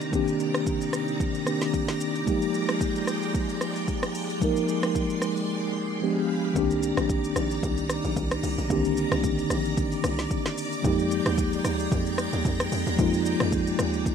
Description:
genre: amapiano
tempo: 112 BPM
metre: 4/4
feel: swing 55% on 16ths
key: C minor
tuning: A4 = 440 Hz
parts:
  - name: mellow tine electric piano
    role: accompaniment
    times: 0.0-14.1 s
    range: D3 to Bb4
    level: -26 LUFS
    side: left 1 dB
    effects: medium stereo tremolo, plate reverb
  - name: string machine, violins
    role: sustained chords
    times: 0.0-14.1 s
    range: C3 to C6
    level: -32 LUFS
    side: right 1 dB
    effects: ensemble chorus
  - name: deep house drum kit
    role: drums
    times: 0.0-14.1 s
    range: hi-hat, kick drum, rim click, shaker, snare drum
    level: -29 LUFS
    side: right 1 dB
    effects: none
  - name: hollow log drum bass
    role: bass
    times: 6.6-14.1 s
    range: Bb1 to F2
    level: -30 LUFS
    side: right 1 dB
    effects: none
room: light reverb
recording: rough home demo mix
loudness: -24 LUFS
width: side -7 dB against mid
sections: 0.0-6.6 A section; 6.6-14.1 B section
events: drop 6.6-14.1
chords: 0.0 Cm9; 2.3 Fm11; 6.0 G7b9; 6.6 Cm9; 10.8 Fm11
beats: | 0.13 0.67 1.20 1.74 | 2.27 2.81 3.34 3.88 | 4.42 4.95 5.49 6.02 | 6.56 7.09 7.63 8.16 | 8.70 9.24 9.77 10.31 | 10.84 11.38 11.91 12.45 | 12.99 13.52 14.06

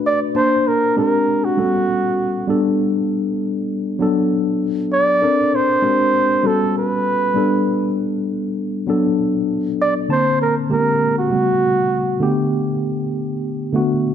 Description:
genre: soul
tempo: 98 BPM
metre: 4/4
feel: swing 54% on 16ths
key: unclear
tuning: A4 = 440 Hz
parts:
  - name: tine electric piano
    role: accompaniment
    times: 0.0-14.1 s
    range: C#3 to A5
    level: -18 LUFS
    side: left 1 dB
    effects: medium stereo tremolo
  - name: breathy flugelhorn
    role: melody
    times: 0.1-12.4 s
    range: F#4 to D5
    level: -18 LUFS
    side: right 2 dB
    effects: none
room: moderate echo chamber reverb, RT60 1.5 s, small room ambience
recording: dark, warm production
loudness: -16 LUFS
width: side -9 dB against mid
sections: 0.0-14.1 A section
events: none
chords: 0.4 Bbmaj9; 1.0 G#maj9#11; 1.6 Gmaj9#11; 2.5 A9sus4; 4.0 D6; 5.2 Bbmaj9; 5.8 G#maj9#11; 6.4 Gmaj9#11; 7.4 A9sus4; 8.9 D6; 10.1 Bbmaj9; 10.7 G#maj9#11; 11.3 Gmaj9#11; 12.2 A9sus4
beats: 0.35 0.96 | 1.57 2.18 2.79 3.40 | 4.00 4.61 5.22 5.83 | 6.44 7.05 7.66 8.27 | 8.88 9.48 10.09 10.70 | 11.31 11.92 12.53 13.14 | 13.75

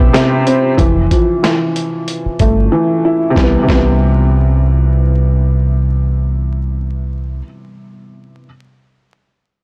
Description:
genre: hip hop, boom-bap hip-hop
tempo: 93 BPM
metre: 4/4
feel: swing 54% on 16ths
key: C major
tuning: A4 = 441 Hz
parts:
  - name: dark upright piano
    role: accompaniment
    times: 0.0-8.5 s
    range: C3 to E4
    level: -18 LUFS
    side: equal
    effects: cassette tape, high-pass filter, low-pass filter
  - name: tonewheel organ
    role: sustained chords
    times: 0.0-0.8 s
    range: G4 to C6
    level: -30 LUFS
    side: equal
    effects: slow rotary speaker, high-pass filter, low-pass filter
  - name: deep dub fingered electric bass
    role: bass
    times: 0.0-7.4 s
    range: F1 to C2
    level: -16 LUFS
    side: equal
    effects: transformer saturation
  - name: boom bap sampler-style drum kit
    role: drums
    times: 0.1-3.9 s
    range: hi-hat, kick drum, snare drum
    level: -17 LUFS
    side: equal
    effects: none
room: little or no reverb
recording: blown-out, overdriven recording, vinyl crackle, overdrive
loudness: -14 LUFS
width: mono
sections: 0.8-3.4 A section; 3.4-5.9 B section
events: drums muted 2.7-3.4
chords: 0.0 Cmaj7; 0.8 Fmaj7; 3.4 Cmaj7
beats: 0.14 | 0.78 1.43 2.07 2.72 | 3.36 4.01 4.65 5.30

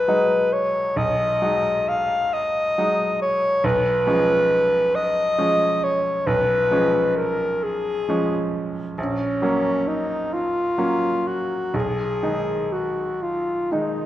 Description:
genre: classical, romantic duo for alto saxophone and grand piano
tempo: 38-47 BPM (dotted quarters)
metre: 12/8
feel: rubato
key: unclear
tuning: A4 = 440 Hz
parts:
  - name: clear alto saxophone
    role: melody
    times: 0.0-14.1 s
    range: C#4 to E#5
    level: -20 LUFS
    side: left 1 dB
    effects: none
  - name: bright grand piano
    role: accompaniment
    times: 0.0-14.1 s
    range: A#1 to D#4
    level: -25 LUFS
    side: right 2 dB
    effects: none
room: moderate recital hall reverb, RT60 1.3 s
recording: worn, warbling old tape, cassette tape, warbly pitch drift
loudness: -19 LUFS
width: side -13 dB against mid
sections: 0.0-14.1 A section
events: none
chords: 0.0 G#m7/B; 3.6 C#7/B; 9.0 F#/A#; 11.7 G#m/B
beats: 0.97 2.33 | 3.64 4.95 6.27 7.63 | 8.98 10.32 11.74 13.21

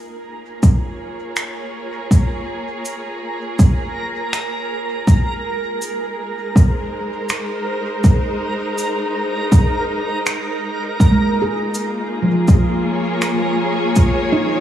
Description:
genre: ambient dub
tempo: 81 BPM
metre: 4/4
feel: swing 54% on 16ths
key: Bb minor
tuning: A4 = 440 Hz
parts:
  - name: warm studio string section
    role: sustained chords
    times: 0.0-14.6 s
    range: Ab3 to Db5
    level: -23 LUFS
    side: left 1 dB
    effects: none
  - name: backwards swelling texture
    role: texture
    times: 0.0-14.6 s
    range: Bb4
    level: -26 LUFS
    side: right 3 dB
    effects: built-in reverb
  - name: cabasa and finger snaps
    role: drums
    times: 0.6-14.1 s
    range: none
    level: -25 LUFS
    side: equal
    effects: dub echo
  - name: electronic kick drum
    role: drums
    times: 0.6-14.1 s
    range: none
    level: -13 LUFS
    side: equal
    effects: overdrive
  - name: handpan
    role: arpeggios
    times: 11.1-14.6 s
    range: F3 to Ab4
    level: -19 LUFS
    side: right 2 dB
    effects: tape echo
room: light reverb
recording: small room ambience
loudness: -16 LUFS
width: side -11 dB against mid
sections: 0.0-14.6 A section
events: fade-in on string section 0.0-14.6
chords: 0.0 Bbm7; 5.1 Abadd9; 11.0 Bbm7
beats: 0.63 1.37 | 2.11 2.85 3.59 4.33 | 5.08 5.82 6.56 7.30 | 8.04 8.78 9.52 10.26 | 11.00 11.74 12.48 13.22 | 13.96

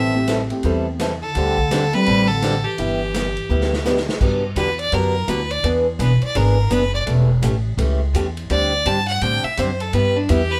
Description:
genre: country, western swing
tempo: 168 BPM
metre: 4/4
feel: swing 64% on 8ths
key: G major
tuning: A4 = 439 Hz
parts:
  - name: clear fiddle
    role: melody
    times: 0.0-10.6 s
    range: D4 to A5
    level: -25 LUFS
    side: equal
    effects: none
  - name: breathy clarinet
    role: second line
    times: 0.0-3.9 s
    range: D3 to C4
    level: -24 LUFS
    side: equal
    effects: none
  - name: picked old ladder-braced acoustic guitar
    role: accompaniment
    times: 0.0-10.4 s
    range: D3 to A4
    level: -24 LUFS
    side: equal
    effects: none
  - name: upright bass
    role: bass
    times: 0.0-10.6 s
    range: E1 to A2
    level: -23 LUFS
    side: equal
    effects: none
  - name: tack piano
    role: accompaniment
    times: 0.1-4.1 s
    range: A3 to G4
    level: -28 LUFS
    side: equal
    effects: none
  - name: swinging big-band drum kit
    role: drums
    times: 0.3-10.4 s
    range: crash cymbal, hi-hat, kick drum, ride cymbal, snare drum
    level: -31 LUFS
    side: equal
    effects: none
room: moderate studio ambience, RT60 0.5 s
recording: band playing live in one room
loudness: -19 LUFS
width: mono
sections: 0.0-4.2 A section; 4.2-10.6 B section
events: drum fill 3.5-4.2; fiddle solo 4.2-10.6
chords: 0.0 Am7; 1.4 D7sus4; 2.8 G6; 4.2 Gmaj7; 5.6 E7; 7.1 A7/E; 8.5 D7sus4; 9.9 G6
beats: 0.28 0.64 0.99 | 1.35 1.71 2.07 2.42 | 2.78 3.14 3.50 3.85 | 4.21 4.57 4.92 5.28 | 5.64 6.00 6.35 6.71 | 7.07 7.43 7.79 8.14 | 8.50 8.86 9.22 9.57 | 9.93 10.29

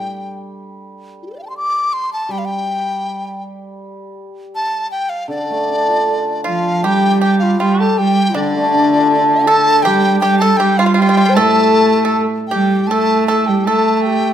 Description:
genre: chinese traditional, Chinese chamber ensemble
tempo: 79 BPM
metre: 2/4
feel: rubato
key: unclear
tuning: A4 = 439 Hz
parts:
  - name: mellow large dizi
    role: melody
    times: 0.0-14.3 s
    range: F4 to D6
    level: -18 LUFS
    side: left 1 dB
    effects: none
  - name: hammered dulcimer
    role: accompaniment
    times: 0.0-13.7 s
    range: A2 to A4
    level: -20 LUFS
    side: right 1 dB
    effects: none
  - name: pipa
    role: second line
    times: 6.4-14.3 s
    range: D4 to A4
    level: -20 LUFS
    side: right 3 dB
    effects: none
  - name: mellow xiao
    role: second line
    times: 6.5-14.3 s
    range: D4 to C5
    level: -19 LUFS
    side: left 8 dB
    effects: none
  - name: rich cello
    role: second line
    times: 6.5-14.3 s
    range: D3 to A3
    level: -16 LUFS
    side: right 4 dB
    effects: none
room: moderate recital hall reverb, RT60 1.5 s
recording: none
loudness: -12 LUFS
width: side -10 dB against mid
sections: 0.0-6.8 A section; 6.8-14.3 B section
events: none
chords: none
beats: | 0.77 1.56 | 2.32 3.06 | 3.81 4.55 | 5.30 6.07 | 6.84 7.61 | 8.36 9.11 | 9.86 10.60 | 11.36 12.12 | 12.90 13.68

